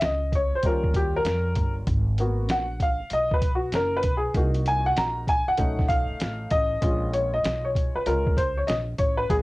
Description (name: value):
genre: hip hop, jazz-hop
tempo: 97 BPM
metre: 4/4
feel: swing 64% on 16ths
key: unclear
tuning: A4 = 440 Hz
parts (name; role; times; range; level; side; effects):
- warm upright piano; accompaniment; 0.0-9.3 s; G3 to Bb5; -25 LUFS; left 1 dB; cassette tape
- upright bass; bass; 0.0-9.4 s; Gb1 to F2; -28 LUFS; equal; none
- lo-fi sampler-style drum kit; drums; 0.0-9.4 s; hi-hat, kick drum, snare drum; -26 LUFS; equal; cassette tape
room: light reverb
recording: home recording on cassette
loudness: -22 LUFS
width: side -20 dB against mid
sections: 0.0-9.4 A section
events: upright piano solo 0.0-9.4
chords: 0.0 N.C.; 0.6 Eb7; 1.9 Abm9; 4.3 Cm7b5; 5.6 B9; 6.8 Bbm7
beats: 0.02 0.63 1.25 | 1.87 2.49 3.11 3.73 | 4.35 4.96 5.58 6.20 | 6.82 7.44 8.06 8.68 | 9.29